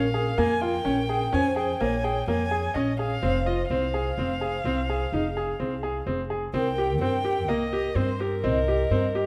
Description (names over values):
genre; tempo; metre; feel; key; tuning
contemporary instrumental, contemporary; 127 BPM; 7/4; straight; F minor; A4 = 440 Hz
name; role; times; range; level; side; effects
dark violin; melody; 0.0-9.3 s; Bb4 to Ab5; -33 LUFS; equal; none
vibraphone with soft mallets; second line; 0.0-9.3 s; Ab4 to Eb5; -34 LUFS; equal; none
clear grand piano; arpeggios; 0.0-9.3 s; Bb3 to Ab4; -29 LUFS; equal; none
upright bass; bass; 0.0-9.3 s; F1 to G2; -32 LUFS; equal; none
room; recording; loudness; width
moderate concert hall reverb, RT60 2.2 s; none; -26 LUFS; mono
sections
0.0-6.5 A section; 6.5-9.3 B section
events
none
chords
0.0 Bbm7; 3.2 Fm; 6.5 Cm7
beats
0.37 0.85 1.32 1.80 2.28 2.75 | 3.23 3.70 4.17 4.65 5.12 5.60 6.07 | 6.54 7.02 7.49 7.96 8.43 8.90